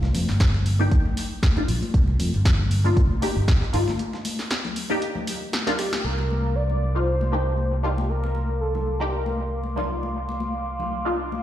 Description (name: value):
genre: deep house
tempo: 117 BPM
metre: 4/4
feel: swing 55% on 16ths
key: C minor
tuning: A4 = 440 Hz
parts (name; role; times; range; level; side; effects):
- fingered electric bass; bass; 0.0-11.4 s; G1 to F2; -24 LUFS; equal; sidechain pumping, low-pass filter
- dusty soul sampler-style drum kit; drums; 0.0-11.3 s; hi-hat, snare drum; -39 LUFS; right 1 dB; sidechain pumping on hats, high-pass filter on hats, low-pass filter on hats, high-pass filter on snare, low-pass filter on snare
- congas; percussion; 0.0-11.4 s; none; -33 LUFS; left 4 dB; none
- punchy analog drum machine; drums; 0.1-6.2 s; crash cymbal, hi-hat, snare drum; -30 LUFS; equal; low-pass filter on hats, low-pass filter on snare, low-pass filter on cymbals, low-pass filter on room
- electronic kick drum; drums; 0.4-3.6 s; none; -20 LUFS; equal; none
- filtered dub chord stab; stabs; 0.8-11.4 s; Bb3 to G4; -29 LUFS; left 1 dB; phaser, ensemble chorus, sidechain pumping, dub echo
- warm velvety synth lead; melody; 5.8-9.6 s; G4 to D5; -30 LUFS; equal; chorus, cassette tape, dub echo
- warm analog pad; sustained chords; 6.0-11.4 s; F5 to D6; -34 LUFS; right 2 dB; chorus, vintage 12-bit sampler grit, sidechain pumping
room: light reverb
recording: played on a big sound system in a bare room, large studio reverb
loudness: -21 LUFS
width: side -12 dB against mid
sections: 0.0-6.0 A section; 6.0-11.4 B section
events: filter sweep on synth stab 0.0-6.0; break 4.0-6.0; drum fill 5.7-6.0; band accent 5.9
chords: 0.0 Cm11 (rootless); 6.0 Cm11